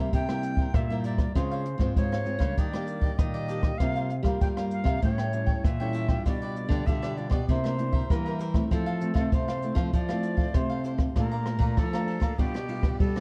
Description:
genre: samba and choro.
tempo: 98 BPM.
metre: 4/4.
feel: straight.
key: F major.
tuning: A4 = 440 Hz.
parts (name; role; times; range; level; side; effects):
cavaquinho; accompaniment; 0.0-13.2 s; D4 to Bb5; -41 LUFS; equal; none.
nylon-string guitar; accompaniment; 0.0-13.2 s; G2 to F4; -35 LUFS; equal; none.
nylon-string guitar; bass; 0.0-13.2 s; Ab2 to Bb3; -33 LUFS; equal; none.
jazz flute; second line; 0.1-13.2 s; G4 to G5; -38 LUFS; equal; none.
jazz brush drum kit; drums; 0.1-13.2 s; hi-hat, kick drum, ride cymbal, rim click; -29 LUFS; equal; none.
room: small room reverb.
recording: dark, warm production.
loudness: -27 LUFS.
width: mono.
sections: 0.0-11.2 A section; 11.2-13.2 B section.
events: none.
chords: 0.0 C7; 1.4 Dbmaj7; 2.6 Ebmaj7; 3.8 C7sus4; 5.0 A7; 6.3 G7/B; 7.5 C9; 8.7 Fmaj7; 11.2 Bbmaj7; 12.4 G7/B.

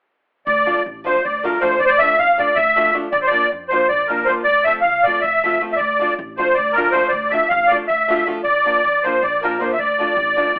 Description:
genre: balkan folk, Balkan wedding band.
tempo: 315 BPM (eighths).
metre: 7/8.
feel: straight.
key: D minor.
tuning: A4 = 440 Hz.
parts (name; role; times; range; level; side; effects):
musette accordion; melody; 0.5-10.6 s; Bb4 to F5; -18 LUFS; equal; plate reverb.
upright bass; bass; 0.5-10.6 s; F1 to F2; -40 LUFS; equal; none.
nylon-string guitar; accompaniment; 0.7-10.5 s; F3 to F4; -27 LUFS; equal; none.
room: wet studio reverb, RT60 0.6 s.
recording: telephone sound.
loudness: -17 LUFS.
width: mono.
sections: 0.5-10.6 A section.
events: none.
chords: 0.5 Dm; 3.1 Bb; 4.5 F; 5.8 Dm; 8.5 Bb; 9.8 Dm.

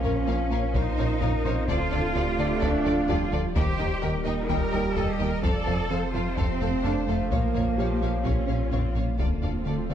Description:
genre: cinematic, hybrid orchestral and electronic film score.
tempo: 128 BPM.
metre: 4/4.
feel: straight.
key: unclear.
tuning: A4 = 440 Hz.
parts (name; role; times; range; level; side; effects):
clear symphonic violin section; melody; 0.0-9.9 s; D5 to G5; -39 LUFS; left 5 dB; none.
warm symphonic violin section; second line; 0.0-9.9 s; A4 to Eb5; -37 LUFS; left 3 dB; none.
rich symphonic viola section; accompaniment; 0.0-9.9 s; Db4 to Eb5; -37 LUFS; equal; none.
bright trombone section; sustained chords; 0.0-9.9 s; A2 to A3; -35 LUFS; right 5 dB; none.
mellow French horn section; sustained chords; 0.0-9.9 s; A4 to F5; -37 LUFS; left 7 dB; none.
thumb-piano-like synth pluck; arpeggios; 0.0-9.9 s; D3 to Bb4; -34 LUFS; right 5 dB; chorus, tape echo.
rubbery square bass; riff; 0.0-9.9 s; D2 to Bb3; -33 LUFS; left 3 dB; none.
bright symphonic double bass section; bass; 0.0-9.9 s; Bb1 to F2; -33 LUFS; right 3 dB; none.
punchy sub bass; bass; 0.0-9.9 s; D1 to Bb1; -31 LUFS; equal; none.
rich symphonic cello section; bass; 0.0-9.9 s; G3 to Bb4; -30 LUFS; right 2 dB; none.
taiko ensemble; drums; 0.0-9.6 s; none; -32 LUFS; left 1 dB; none.
clear grand piano; texture; 0.0-9.2 s; G3 to D6; -38 LUFS; left 1 dB; none.
swell; sound effects; 9.6-9.9 s; none; -41 LUFS; right 2 dB; none.
room: moderate scoring stage reverb, RT60 1.7 s.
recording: dark, warm production.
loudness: -23 LUFS.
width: side -9 dB against mid.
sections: 0.0-9.9 A section.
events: swell 9.6-9.9.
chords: 0.0 Bbm; 1.7 Dm; 3.6 Eb; 5.4 F; 7.3 Bbm; 9.2 Dm.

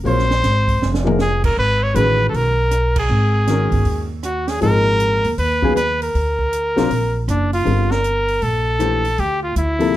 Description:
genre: modal jazz.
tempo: 158 BPM.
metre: 4/4.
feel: swing 65% on 8ths.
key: unclear.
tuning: A4 = 439 Hz.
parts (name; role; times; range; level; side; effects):
warm baby grand piano; accompaniment; 0.0-10.0 s; Bb2 to Db5; -20 LUFS; left 3 dB; none.
upright bass; bass; 0.0-10.0 s; F1 to Eb2; -19 LUFS; equal; none.
breathy trumpet; melody; 0.1-10.0 s; D4 to Db5; -19 LUFS; equal; none.
compact cocktail drum kit; drums; 0.1-10.0 s; crash cymbal, hi-hat, kick drum, rim click, snare drum, toms; -25 LUFS; right 2 dB; none.
room: light reverb.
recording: none.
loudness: -15 LUFS.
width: side -14 dB against mid.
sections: 0.0-7.7 A section; 7.7-10.0 B section.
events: drum fill 0.8-1.2; band accent 2.9.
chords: 0.0 Bbm9; 1.6 Abm9; 6.1 D7b13; 7.7 Gm9.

